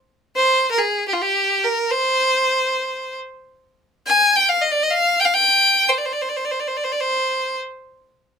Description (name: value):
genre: turkish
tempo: 106 BPM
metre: 4/4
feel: straight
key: C makam nihavent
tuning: A4 = 440 Hz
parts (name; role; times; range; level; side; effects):
- clear violin; solo; 0.4-7.6 s; F4 to Ab5; -16 LUFS; equal; none
room: light reverb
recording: band playing live in one room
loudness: -16 LUFS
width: side -6 dB against mid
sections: 0.1-8.4 A section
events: none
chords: none